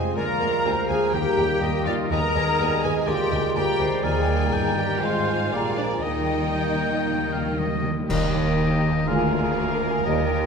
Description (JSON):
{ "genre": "classical, dramatic, fast romantic movement for symphony orchestra", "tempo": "123 BPM", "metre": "4/4", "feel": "rubato", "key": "Eb major", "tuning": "A4 = 440 Hz", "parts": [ { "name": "large flute ensemble", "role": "second line", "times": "0.0-10.5 s", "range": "G5 to C6", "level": "-33 LUFS", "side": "right 2 dB", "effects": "none" }, { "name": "mellow clarinet", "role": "second line", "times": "0.0-10.5 s", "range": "Ab4 to Eb5", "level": "-34 LUFS", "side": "equal", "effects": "none" }, { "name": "warm symphonic violin section", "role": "second line", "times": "0.0-10.5 s", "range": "G4 to Ab5", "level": "-34 LUFS", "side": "left 3 dB", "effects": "none" }, { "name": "warm bassoon", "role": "accompaniment", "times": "0.0-10.5 s", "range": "Eb3 to Bb3", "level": "-31 LUFS", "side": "right 3 dB", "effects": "none" }, { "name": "dark trombone section", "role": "sustained chords", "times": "0.0-10.2 s", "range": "Ab2 to Ab3", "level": "-33 LUFS", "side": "right 4 dB", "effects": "none" }, { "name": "warm French horn section", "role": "sustained chords", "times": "0.0-10.2 s", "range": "Bb3 to G4", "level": "-34 LUFS", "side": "left 3 dB", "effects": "none" }, { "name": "concert harp", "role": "arpeggios", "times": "0.0-10.5 s", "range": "F2 to Bb5", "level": "-29 LUFS", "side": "left 5 dB", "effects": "none" }, { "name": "rich symphonic cello section", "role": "bass", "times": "0.0-10.5 s", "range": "D2 to Eb3", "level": "-30 LUFS", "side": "right 2 dB", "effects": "none" }, { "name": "warm symphonic double bass section", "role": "bass", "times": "0.0-10.5 s", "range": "F1 to Eb2", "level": "-30 LUFS", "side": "right 3 dB", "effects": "none" }, { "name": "warm symphonic violin section", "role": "melody", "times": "0.2-10.5 s", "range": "Bb4 to Bb5", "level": "-32 LUFS", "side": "left 4 dB", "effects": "none" }, { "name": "bright oboe", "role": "second line", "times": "0.2-10.5 s", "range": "D5 to G5", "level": "-31 LUFS", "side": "equal", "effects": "none" }, { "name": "warm symphonic viola section", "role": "accompaniment", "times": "0.2-10.5 s", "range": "D4 to Bb4", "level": "-28 LUFS", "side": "equal", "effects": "none" }, { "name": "timpani", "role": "percussion", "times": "1.1-8.8 s", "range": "Eb3", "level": "-33 LUFS", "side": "left 1 dB", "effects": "none" }, { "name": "clash cymbals and concert bass drum", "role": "percussion", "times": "8.1-9.0 s", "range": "none", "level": "-32 LUFS", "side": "left 1 dB", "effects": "none" } ], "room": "wet concert hall reverb, RT60 1.9 s", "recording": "minimal, uncompressed stereo recording", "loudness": "-20 LUFS", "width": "side -5 dB against mid", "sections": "0.0-8.1 A section; 8.1-10.5 B section", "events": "timpani fill 6.0-8.1; band accent 8.1-8.6", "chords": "0.2 Bb7/D; 1.1 Eb; 2.1 Abm/Eb; 3.1 Bb7/D; 4.0 Eb; 5.0 Fm/Ab; 5.5 Bb7; 6.0 Eb; 9.1 Bb7/D" }